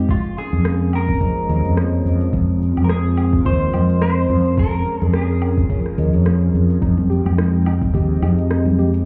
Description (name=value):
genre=sunset chillout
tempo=107 BPM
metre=4/4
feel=swing 56% on 16ths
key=F minor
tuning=A4 = 440 Hz
part: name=clean electric guitar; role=melody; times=0.0-5.9 s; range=F4 to C5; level=-28 LUFS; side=equal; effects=subtle chorus, delay
part: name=bell-like tine electric piano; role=accompaniment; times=0.0-9.1 s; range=F3 to Eb5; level=-27 LUFS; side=equal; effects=low-pass filter, digital delay
part: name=airy breathy pad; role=sustained chords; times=0.0-9.0 s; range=F3 to G5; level=-27 LUFS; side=equal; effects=chorus, phaser
part: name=fretless electric bass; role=bass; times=0.0-9.0 s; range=Eb2 to F2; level=-19 LUFS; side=equal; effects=none
part: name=electronic kick drum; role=drums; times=0.1-8.1 s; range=none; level=-23 LUFS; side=equal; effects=overdrive, studio reverb
part: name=smooth R&B drum kit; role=drums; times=0.1-9.0 s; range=cabasa, hi-hat, rim click, woodblock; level=-31 LUFS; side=equal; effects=overdrive, studio reverb
part: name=soft round pluck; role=arpeggios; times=6.8-8.9 s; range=Eb4 to G4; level=-31 LUFS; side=equal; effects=analog chorus, digital delay
part: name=congas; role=percussion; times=7.0-8.9 s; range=none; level=-29 LUFS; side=equal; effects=none
room=light reverb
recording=heard muffled through a wall, club reverb, EQ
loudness=-18 LUFS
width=mono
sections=0.0-9.1 A section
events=none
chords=0.1 Bbm11/F; 2.3 Ab69/F; 4.3 Eb7sus4/F (rootless); 6.8 Fm9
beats=| 0.09 0.65 1.21 1.77 | 2.33 2.89 3.46 4.02 | 4.58 5.14 5.70 6.26 | 6.82 7.38 7.94 8.50